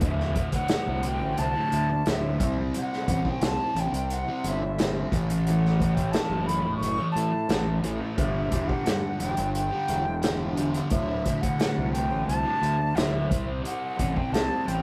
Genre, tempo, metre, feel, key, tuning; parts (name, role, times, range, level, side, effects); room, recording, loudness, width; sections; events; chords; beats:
psychedelic rock; 88 BPM; 4/4; straight; D mixolydian; A4 = 440 Hz
silver concert flute; melody; 0.0-14.8 s; E5 to C#6; -33 LUFS; equal
fuzz guitar; riff; 0.0-14.8 s; D2 to C4; -32 LUFS; equal; distortion, phaser
fuzz fingered electric bass; bass; 0.0-14.8 s; D1 to A2; -32 LUFS; equal; overdrive
vintage drum kit; drums; 0.0-14.8 s; hi-hat, kick drum, snare drum; -31 LUFS; equal
moderate studio reverb, RT60 0.6 s; rough rehearsal-room recording; -26 LUFS; mono
0.0-14.8 A section
0.0 D5; 2.4 C; 5.1 A5; 8.2 G5; 10.9 D5; 13.3 C5
| 0.01 0.69 1.37 2.05 | 2.73 3.41 4.09 4.77 | 5.46 6.14 6.82 7.50 | 8.19 8.87 9.55 10.23 | 10.92 11.60 12.28 12.97 | 13.65 14.33